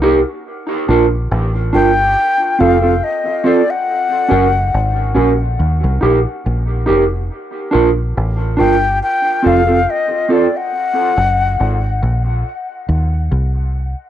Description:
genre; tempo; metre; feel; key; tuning
dub reggae; 70 BPM; 4/4; swing 56% on 16ths; Bb major; A4 = 441 Hz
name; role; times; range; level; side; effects
mellow electric guitar; accompaniment; 0.0-10.5 s; C4 to Bb4; -16 LUFS; right 3 dB; dub echo, plate reverb
deep dub fingered electric bass; bass; 0.0-13.9 s; F1 to Eb2; -16 LUFS; equal; tube saturation
breathy mellow concert flute; melody; 1.7-12.3 s; D5 to G5; -17 LUFS; left 3 dB; cassette tape, dub echo
room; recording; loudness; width
light reverb; home recording on cassette; -12 LUFS; side -11 dB against mid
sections
0.0-14.1 A section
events
break 10.7-14.1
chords
0.5 Bb; 2.2 F; 3.9 Gb; 5.6 Eb; 7.3 Bb; 9.0 F; 10.7 Gb; 12.4 Cm

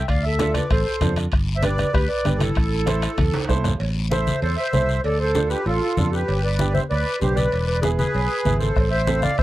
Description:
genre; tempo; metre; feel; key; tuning
latin, cumbia; 194 BPM; 4/4; straight; A minor; A4 = 440 Hz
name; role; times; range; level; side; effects
accordion; melody; 0.0-9.4 s; F4 to F5; -25 LUFS; right 3 dB; light tremolo tuning
dark clarinet; second line; 0.0-9.4 s; E4 to D5; -27 LUFS; left 3 dB; none
fingered electric bass; bass; 0.0-9.4 s; E1 to F2; -23 LUFS; equal; none
bombo; percussion; 0.1-3.8, 8.8-9.4 s; none; -23 LUFS; equal; none
congas; percussion; 0.1-9.4 s; none; -26 LUFS; left 2 dB; none
guiro; percussion; 0.1-9.4 s; none; -36 LUFS; left 8 dB; none
timbales and cowbell; percussion; 0.1-9.4 s; none; -34 LUFS; right 5 dB; none
warm upright piano; accompaniment; 0.4-9.3 s; B3 to C5; -27 LUFS; right 5 dB; none
room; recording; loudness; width
light reverb; dry, close 1970s-style studio recording; -19 LUFS; side -15 dB against mid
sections
0.0-3.8 A section; 3.8-9.4 A section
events
drum fill 3.2-3.8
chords
0.1 Dm; 1.3 G; 2.6 Am; 5.0 Dm; 6.3 G; 7.5 E; 8.8 Am

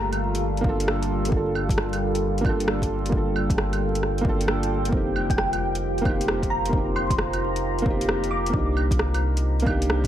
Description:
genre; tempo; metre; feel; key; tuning
future garage; 133 BPM; 4/4; swing 66% on 16ths; G minor; A4 = 440 Hz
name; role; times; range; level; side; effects
thumb-piano-like synth pluck; melody; 0.0-0.5, 5.3-8.6 s; G5 to D6; -31 LUFS; equal; ensemble chorus, dub echo
felt-muted upright piano; accompaniment; 0.0-10.1 s; A3 to A4; -27 LUFS; right 2 dB; sidechain pumping, digital delay
deep dark ambient pad; sustained chords; 0.0-10.1 s; G3 to Bb5; -29 LUFS; left 1 dB; chorus, built-in reverb, sidechain pumping
warm sub bass; bass; 0.0-10.1 s; F1 to C2; -27 LUFS; equal; none
deep house drum kit; drums; 0.1-10.1 s; claves, hi-hat, rim click; -29 LUFS; right 1 dB; overdrive, small room ambience
electronic kick drum; drums; 0.6-10.1 s; none; -27 LUFS; equal; overdrive, small room ambience
room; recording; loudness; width
moderate recital hall reverb, RT60 1.4 s, digital ambience; vinyl crackle; -21 LUFS; side -11 dB against mid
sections
0.0-10.1 A section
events
none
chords
0.0 Gm9; 4.9 F9sus4; 8.5 Cm9

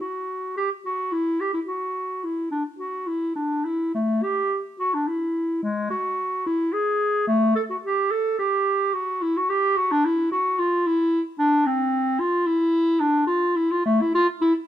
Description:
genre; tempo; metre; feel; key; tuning
classical, baroque-style fantasia for unaccompanied clarinet; 73 BPM (dotted quarters); 12/8; rubato; unclear; A4 = 441 Hz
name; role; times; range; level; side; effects
warm clarinet; solo; 0.0-14.5 s; Ab3 to A4; -21 LUFS; equal; none
room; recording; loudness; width
moderate stone room reverb, RT60 1.0 s; dark, warm production; -21 LUFS; side -11 dB against mid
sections
0.0-14.7 A section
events
none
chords
none

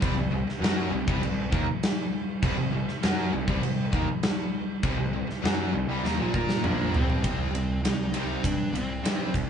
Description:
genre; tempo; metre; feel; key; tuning
hard rock; 100 BPM; 4/4; straight; C minor; A4 = 442 Hz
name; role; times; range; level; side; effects
distorted electric guitar; riff; 0.0-9.5 s; Bb2 to Bb4; -34 LUFS; left 7 dB; overdrive
overdriven semi-hollow guitar; riff; 0.0-9.5 s; Bb2 to Bb4; -33 LUFS; right 6 dB; none
fuzz picked electric bass; bass; 0.0-9.5 s; Bb1 to Bb2; -32 LUFS; equal; overdrive
big rock drum kit; drums; 0.0-9.5 s; crash cymbal, kick drum, ride cymbal, snare drum, toms; -27 LUFS; equal; none
high-gain lead guitar; melody; 6.6-9.3 s; C4 to Eb4; -34 LUFS; equal; distortion
room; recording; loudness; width
light reverb; band playing live in one room, nothing above 10.3 kHz; -24 LUFS; side -8 dB against mid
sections
0.0-7.2 A section; 7.2-9.5 B section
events
drum fill 6.0-7.2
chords
0.0 Cm

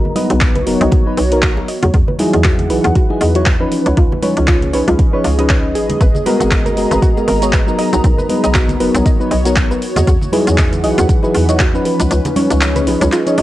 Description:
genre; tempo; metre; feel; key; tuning
deep house; 118 BPM; 4/4; swing 56% on 16ths; G# minor; A4 = 442 Hz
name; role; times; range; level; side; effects
mellow FM electric piano; stabs; 0.0-13.4 s; E#3 to C#5; -17 LUFS; left 1 dB; chorus, sidechain pumping, analog delay
airy breathy pad; texture; 0.0-13.4 s; E3 to A#5; -21 LUFS; equal; chorus, sidechain pumping
congas and bongos; percussion; 0.1-13.2 s; none; -24 LUFS; right 1 dB; sidechain pumping on perc
soft round pluck; arpeggios; 0.2-13.4 s; E#4 to D#5; -22 LUFS; right 1 dB; chorus, sidechain pumping, tape echo
deep house drum kit; drums; 0.2-13.4 s; handclaps, hi-hat, shaker; -22 LUFS; equal; vintage 12-bit sampler grit, studio ambience
hollow knocking FM bass; bass; 0.3-13.4 s; F#1 to E2; -17 LUFS; equal; sidechain pumping
electronic kick drum; drums; 0.4-11.7 s; none; -14 LUFS; equal; vintage 12-bit sampler grit, studio ambience
room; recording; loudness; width
light reverb, digital ambience; none; -11 LUFS; side -15 dB against mid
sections
0.0-13.4 A section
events
kick drops out 12.1-13.4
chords
0.0 G#m9; 1.7 Emaj9; 3.7 C#9; 6.0 G#m9; 9.8 Emaj9; 11.9 C#9

